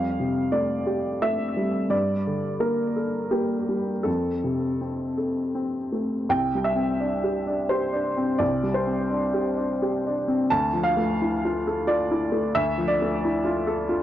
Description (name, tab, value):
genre	neoclassical minimalist piano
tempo	86 BPM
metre	3/4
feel	rubato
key	unclear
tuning	A4 = 440 Hz
part	warm upright piano	solo	0.0-14.0 s	C2 to A5	-22 LUFS	equal	analog delay
room	moderate small room reverb, RT60 0.5 s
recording	dry, gritty hardware recording, transformer saturation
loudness	-22 LUFS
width	side -12 dB against mid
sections	0.0-6.3 A section; 6.3-14.0 B section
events	none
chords	0.0 Fadd9; 1.9 Gmadd9; 4.1 F; 6.3 Cadd9; 10.5 Dmadd9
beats	0.53 1.22 | 1.92 2.62 3.33 | 4.07 4.82 5.56 | 6.30 7.01 7.71 | 8.40 9.10 9.80 | 10.49 11.18 11.87 | 12.55 13.23 13.91